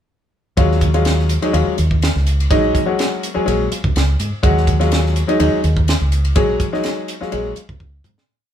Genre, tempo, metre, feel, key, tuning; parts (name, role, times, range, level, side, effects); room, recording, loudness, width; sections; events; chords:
electric jazz fusion; 125 BPM; 4/4; swing 53% on 16ths; Eb minor; A4 = 440 Hz
bright grand piano; accompaniment; 0.6-7.6 s; Gb3 to Ab4; -18 LUFS; left 2 dB
fingered electric bass; bass; 0.6-8.1 s; Bb1 to Ab2; -17 LUFS; equal
tight funk drum kit; drums; 0.6-8.3 s; hi-hat, kick drum, ride cymbal, snare drum, toms; -21 LUFS; right 1 dB
moderate studio reverb, RT60 0.8 s; band playing live in one room; -14 LUFS; side -10 dB against mid
0.6-8.3 groove
fade-out 6.4-8.3; drum fill 7.8-8.3
0.6 Ebm11